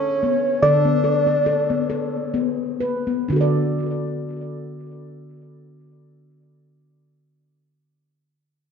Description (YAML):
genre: world meditative, meditative tuned percussion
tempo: 60-76 BPM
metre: 3/4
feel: swing 55% on 16ths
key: D major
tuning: A4 = 440 Hz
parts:
  - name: soft struck synth lead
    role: melody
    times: 0.0-2.3 s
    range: C#5 to D5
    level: -20 LUFS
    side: equal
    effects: chorus, ping-pong delay
  - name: handpan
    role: arpeggios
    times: 0.0-6.9 s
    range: D3 to D5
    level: -22 LUFS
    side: left 1 dB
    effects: ping-pong delay
room: wet echo chamber reverb, RT60 2.1 s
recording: dark, warm production, nothing above 7.6 kHz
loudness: -18 LUFS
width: side -6 dB against mid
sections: 0.0-3.3 A section; 3.3-6.3 B section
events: slowing down 0.0-3.3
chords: 0.0 D5; 3.3 D